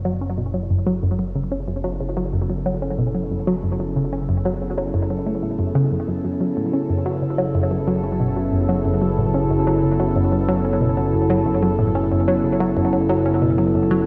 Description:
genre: ambient, sequencer-driven space music.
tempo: 92 BPM.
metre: 4/4.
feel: straight.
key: F# minor.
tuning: A4 = 440 Hz.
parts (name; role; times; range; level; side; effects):
sweeping resonant pad; sustained chords; 0.0-14.1 s; C#3 to A4; -24 LUFS; equal; chorus, phaser.
fat analog bass; bass; 0.0-14.1 s; F#1; -30 LUFS; equal; none.
analog pluck; riff; 0.1-14.0 s; F#2 to C#4; -24 LUFS; equal; chorus, phaser, analog delay.
room: moderate plate reverb, RT60 2.5 s.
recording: worn, warbling old tape, cassette tape, warbly pitch drift.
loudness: -21 LUFS.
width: mono.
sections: 0.0-14.1 A section.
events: fade-in on analog synth pad 0.0-14.1; filter sweep on synth arpeggio sound 0.0-14.1.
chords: 0.0 F#m7.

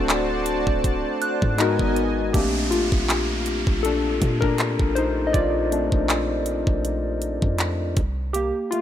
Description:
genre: contemporary R&B.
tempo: 80 BPM.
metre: 4/4.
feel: swing 54% on 16ths.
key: Bb major.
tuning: A4 = 439 Hz.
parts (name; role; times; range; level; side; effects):
warm analog keys; accompaniment; 0.0-8.8 s; Ab3 to Eb5; -23 LUFS; left 2 dB; chorus.
lush unison pad; sustained chords; 0.0-2.3 s; Cb4 to A5; -27 LUFS; right 2 dB; chorus.
warm 808-style bass; bass; 0.0-8.5 s; D1 to Bb2; -27 LUFS; equal; none.
trap drum kit; drums; 0.1-8.8 s; handclaps, hi-hat, kick drum; -24 LUFS; equal; none.
soft synth bell; texture; 1.2-1.9 s; F#6; -31 LUFS; right 4 dB; chorus, tape echo.
downlifter; sound effects; 2.3-8.3 s; none; -33 LUFS; right 1 dB; none.
room: light reverb.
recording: none.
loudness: -20 LUFS.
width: side -11 dB against mid.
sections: 0.0-2.3 A section; 2.3-8.8 B section.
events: synth keys solo 2.3-8.8.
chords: 0.0 D7; 1.6 Abm7; 2.3 Bbmaj7; 8.0 Fsus4.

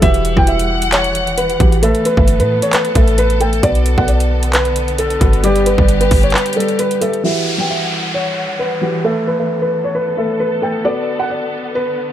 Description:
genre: hip hop, trap.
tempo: 133 BPM.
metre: 4/4.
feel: half-time.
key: E minor.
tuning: A4 = 444 Hz.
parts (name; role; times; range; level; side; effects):
felt-muted upright piano; melody; 0.0-12.1 s; G4 to G5; -18 LUFS; equal; low-pass filter, tape echo.
dark concert grand piano; accompaniment; 0.0-12.1 s; E3 to G5; -20 LUFS; equal; low-pass filter.
warm symphonic string section; sustained chords; 0.0-12.1 s; D3 to F#5; -23 LUFS; left 2 dB; low-pass filter.
warm 808-style bass; bass; 0.0-6.3 s; E1 to A2; -16 LUFS; equal; none.
trap drum kit; drums; 0.0-7.2 s; handclaps, hi-hat, kick drum; -16 LUFS; equal; none.
downlifter; sound effects; 7.2-10.8 s; none; -23 LUFS; equal; none.
room: light reverb, studio ambience.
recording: none.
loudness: -13 LUFS.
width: side -11 dB against mid.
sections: 0.0-7.2 A section; 7.2-12.1 B section.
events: break 6.3-7.2; filter sweep 7.2-12.1.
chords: 0.0 Emadd9; 1.8 Asus2; 3.6 Bm7; 5.4 G; 7.2 Emadd9; 9.0 Asus2; 10.8 Bm7.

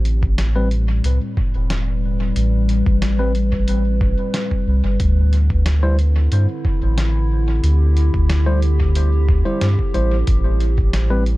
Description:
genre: ambient dub.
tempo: 91 BPM.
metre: 4/4.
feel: straight.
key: A minor.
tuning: A4 = 442 Hz.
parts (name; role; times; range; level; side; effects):
warbly tape-like pad; sustained chords; 0.0-11.4 s; A2 to B4; -25 LUFS; left 1 dB; chorus, built-in reverb.
soft dub sub bass; bass; 0.0-11.4 s; E1 to G2; -16 LUFS; equal; none.
lo-fi sampler-style drum kit; drums; 0.1-11.4 s; hi-hat, snare drum; -30 LUFS; equal; dub echo.
electronic kick drum; drums; 0.2-10.9 s; none; -20 LUFS; equal; none.
tine electric piano; stabs; 0.6-11.2 s; G3 to C5; -27 LUFS; left 1 dB; dub echo.
room: little or no reverb.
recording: dark, warm production.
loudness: -15 LUFS.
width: side -19 dB against mid.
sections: 0.0-11.4 A section.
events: none.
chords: 0.0 Am9; 5.0 D9sus4; 10.3 Am9.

